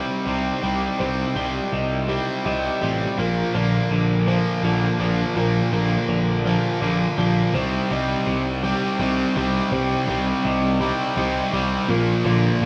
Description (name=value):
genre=post-rock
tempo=55 BPM (dotted quarters)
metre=6/8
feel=straight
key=C minor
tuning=A4 = 439 Hz
part: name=muted chamber string section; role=sustained chords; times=0.0-12.7 s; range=C3 to G5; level=-36 LUFS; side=equal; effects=none
part: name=felt-muted upright piano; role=arpeggios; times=0.0-12.7 s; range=Bb4 to Eb5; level=-36 LUFS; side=equal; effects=slapback echo
part: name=twangy electric guitar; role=arpeggios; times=0.0-12.7 s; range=Bb2 to G3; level=-30 LUFS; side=equal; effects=lush chorus, slapback echo
part: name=crunchy overdriven guitar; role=riff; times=0.0-12.7 s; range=Bb2 to C4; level=-26 LUFS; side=equal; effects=none
part: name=fuzz picked electric bass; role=bass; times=0.3-12.7 s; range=A1 to C2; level=-27 LUFS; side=equal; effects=overdrive
part: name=thick fuzz guitar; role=riff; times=7.5-12.7 s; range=Bb2 to C4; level=-28 LUFS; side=equal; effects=distortion
room=moderate recital hall reverb, RT60 1.4 s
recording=small room ambience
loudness=-22 LUFS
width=mono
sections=0.0-12.7 A section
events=build-up 0.0-12.7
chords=0.0 Cm; 3.2 Bb; 7.5 Cm; 11.9 Bb